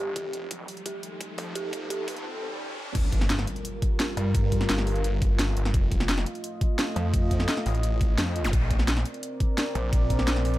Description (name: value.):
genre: dark technical drum and bass.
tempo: 172 BPM.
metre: 4/4.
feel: straight.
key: G minor.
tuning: A4 = 441 Hz.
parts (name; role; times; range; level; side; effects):
dark analog pad; sustained chords; 1.0-10.6 s; F3 to Eb5; -33 LUFS; equal; chorus, sidechain pumping.
dark detuned synth bell; arpeggios; 0.0-2.0 s; G4; -35 LUFS; right 2 dB; chorus, sidechain pumping, digital delay.
snarling distorted saw bass; bass; 0.0-10.6 s; F1 to G2; -27 LUFS; equal; distortion, sidechain pumping, high-pass filter.
riser, swell, impact and zap; sound effects; 0.0-4.3, 8.4-8.5 s; none; -37 LUFS; equal; none.
drum and bass drum kit; drums; 0.2-10.6 s; crash cymbal, hi-hat, snare drum; -29 LUFS; equal; overdrive.
electronic kick drum; drums; 0.2-10.2 s; none; -25 LUFS; equal; overdrive, high-pass filter on kick, high-pass filter on room.
room: little or no reverb.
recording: high-pass filter.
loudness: -24 LUFS.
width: side -16 dB against mid.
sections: 0.0-3.0 A section; 3.0-10.6 B section.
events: build-up 0.0-3.0; riser 0.0-3.0; filter sweep on analog synth pad 0.0-3.0; drum fill 0.2-2.3; break 2.3-3.0; swell 2.3-3.0; drop 3.0-10.6; impact 3.0-4.3.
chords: 0.2 F7; 3.0 Gm7; 5.7 F7; 8.5 Bbadd9.